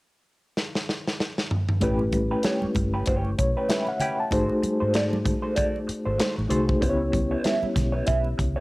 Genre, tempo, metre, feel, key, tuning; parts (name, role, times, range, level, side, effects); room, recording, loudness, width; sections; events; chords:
lush 1970s-style soul; 96 BPM; 4/4; swing 58% on 16ths; A4 = 438 Hz
modern studio drum kit; drums; 0.6-8.6 s; hi-hat, kick drum, snare drum, toms; -27 LUFS; equal
reed electric piano; accompaniment; 1.8-8.6 s; A3 to A5; -26 LUFS; left 1 dB; fast tremolo
electric guitar through a small old amp; riff; 1.8-8.6 s; C#4 to E5; -29 LUFS; right 2 dB; wah
vintage muted fingered electric bass; bass; 1.8-8.5 s; G1 to G#2; -28 LUFS; equal
congas; percussion; 1.8-8.4 s; -34 LUFS; right 2 dB
small room ambience; home recording on cassette; -22 LUFS; side -21 dB against mid
0.0-1.8 A section; 1.8-8.6 B section
drum fill 0.6-1.8
0.0 N.C.; 1.8 A9; 4.3 G#7b9; 6.8 C#m7b5